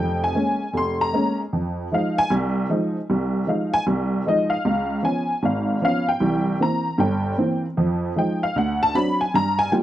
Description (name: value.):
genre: solo jazz.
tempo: 154 BPM.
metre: 4/4.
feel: swing 65% on 8ths.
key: F minor.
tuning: A4 = 440 Hz.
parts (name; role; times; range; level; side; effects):
honky-tonk upright piano; solo; 0.0-9.8 s; F1 to C6; -19 LUFS; equal; none.
room: small room ambience.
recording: dry, close 1970s-style studio recording.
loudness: -20 LUFS.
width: side -13 dB against mid.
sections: 0.0-9.8 A section.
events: honky-tonk piano solo 0.0-9.8.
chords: 0.0 Bbm7; 1.5 Fm7; 4.6 Db7; 6.2 C7; 7.8 Fm7; 8.6 D7.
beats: 0.36 0.75 1.14 | 1.52 1.91 2.30 2.69 | 3.08 3.47 3.86 4.25 | 4.64 5.03 5.42 5.81 | 6.21 6.60 6.99 7.38 | 7.77 8.16 8.55 8.94 | 9.33 9.72.